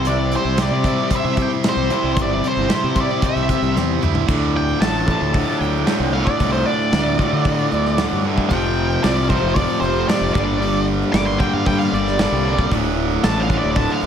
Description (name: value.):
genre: classic rock.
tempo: 114 BPM.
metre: 4/4.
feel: straight.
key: D minor.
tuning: A4 = 440 Hz.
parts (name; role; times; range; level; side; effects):
octave-fuzz lead guitar; melody; 0.0-14.1 s; C5 to D6; -23 LUFS; equal; distortion.
picked steel-string acoustic guitar; accompaniment; 0.0-14.1 s; G2 to G4; -29 LUFS; right 4 dB; none.
crunchy overdriven guitar; riff; 0.0-14.1 s; D2 to C5; -23 LUFS; left 11 dB; none.
distorted electric guitar; riff; 0.0-14.1 s; D2 to C5; -23 LUFS; right 11 dB; overdrive.
fuzz fingered electric bass; bass; 0.0-14.1 s; D1 to D3; -23 LUFS; equal; overdrive.
big rock drum kit; drums; 0.0-13.9 s; crash cymbal, hi-hat, kick drum, snare drum, toms; -23 LUFS; equal; none.
room: light reverb, studio ambience.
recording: none.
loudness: -16 LUFS.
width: side -8 dB against mid.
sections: 0.0-4.3 A section; 4.3-14.1 B section.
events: drum fill 3.8-4.3; lead electric guitar solo 4.3-14.1.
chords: 0.0 C; 4.3 Dm; 8.5 Fadd9; 10.3 Gm; 12.7 Dm.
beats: | 0.06 0.59 1.12 1.65 | 2.18 2.71 3.23 3.76 | 4.29 4.82 5.35 5.87 | 6.40 6.93 7.45 7.98 | 8.51 9.03 9.56 10.09 | 10.61 11.14 11.66 12.19 | 12.72 13.24 13.77.